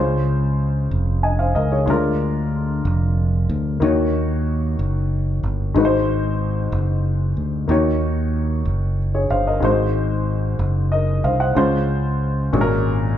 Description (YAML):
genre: slow gospel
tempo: 62 BPM (dotted quarters)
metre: 6/8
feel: straight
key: Db major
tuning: A4 = 440 Hz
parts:
  - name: dark upright piano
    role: accompaniment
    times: 0.0-13.2 s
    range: Ab2 to Ab5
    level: -21 LUFS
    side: left 2 dB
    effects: none
  - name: fingered electric bass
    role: bass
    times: 0.0-13.1 s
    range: F1 to Eb2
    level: -20 LUFS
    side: equal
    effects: none
room: moderate large studio reverb, RT60 1.3 s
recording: band playing live in one room, nothing above 10.4 kHz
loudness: -17 LUFS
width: side -10 dB against mid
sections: 0.0-13.2 A section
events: none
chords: 0.0 Dbmaj7; 1.9 Bb7/D; 3.8 Ebm7; 5.8 Ab7; 7.7 Ebm7; 9.6 Ab7; 11.6 Dbmaj7; 12.5 Ab9sus4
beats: 0.92 | 1.88 2.85 | 3.82 4.79 | 5.76 6.72 | 7.69 8.66 | 9.63 10.60 | 11.56 12.53